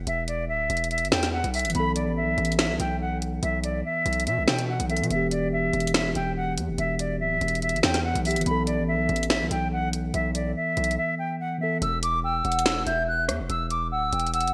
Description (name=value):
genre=hip hop, drill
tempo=143 BPM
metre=4/4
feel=half-time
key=E minor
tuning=A4 = 441 Hz
part: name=distorted 808-style bass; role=bass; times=0.0-14.5 s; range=D1 to B2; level=-32 LUFS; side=equal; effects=distortion
part: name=reedy silver concert flute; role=melody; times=0.1-14.5 s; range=D5 to G6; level=-30 LUFS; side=equal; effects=none
part: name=drill drum kit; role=drums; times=0.1-14.5 s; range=finger snaps, hi-hat, rim click, snare drum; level=-29 LUFS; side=equal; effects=overdrive, vintage 12-bit sampler grit, gated reverb
part: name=mellow tine electric piano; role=accompaniment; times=1.7-11.8 s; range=E3 to A4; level=-32 LUFS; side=equal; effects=none
part: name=hollow clarinet-like synth lead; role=second line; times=12.2-14.5 s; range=E5 to G5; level=-31 LUFS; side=equal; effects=chorus, digital delay
room=moderate lush hall reverb, RT60 1.7 s, digital ambience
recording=bright 1980s-style digital production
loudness=-26 LUFS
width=mono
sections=0.0-11.8 A section; 11.8-14.5 B section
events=break 0.0-1.7; silent gap 11.0-11.8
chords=0.0 E5; 1.7 B7sus4; 5.1 Em; 8.5 B7sus4; 11.8 Em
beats=| 0.07 0.49 0.91 1.33 | 1.75 2.17 2.59 3.01 | 3.43 3.85 4.27 4.68 | 5.11 5.52 5.94 6.36 | 6.78 7.20 7.62 8.04 | 8.46 8.88 9.30 9.72 | 10.14 10.56 10.98 11.40 | 11.82 12.24 12.66 13.08 | 13.50 13.92 14.34